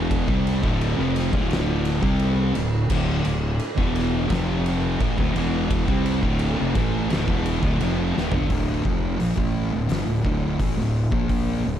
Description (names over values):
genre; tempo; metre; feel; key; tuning
stoner and doom metal; 86 BPM; 4/4; straight; D minor; A4 = 441 Hz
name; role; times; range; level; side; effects
high-gain distorted guitar; riff; 0.0-8.5 s; D2 to C4; -30 LUFS; equal; distortion
thick fuzz guitar; riff; 0.0-11.8 s; D2 to C4; -27 LUFS; left 8 dB; distortion
thick fuzz guitar; riff; 0.0-11.8 s; D2 to C4; -27 LUFS; right 8 dB; distortion
fuzz fingered electric bass; bass; 0.0-11.8 s; D1 to C2; -26 LUFS; equal; overdrive
oversized low-tuned drum kit; drums; 0.1-11.5 s; crash cymbal, hi-hat, kick drum, ride cymbal, snare drum, toms; -26 LUFS; equal; none
room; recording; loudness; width
light reverb; dark, warm production; -20 LUFS; side -10 dB against mid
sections
0.0-8.5 A section; 8.5-11.8 B section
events
drum fill 8.1-8.5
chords
0.0 Dm; 4.3 F5; 5.0 Dm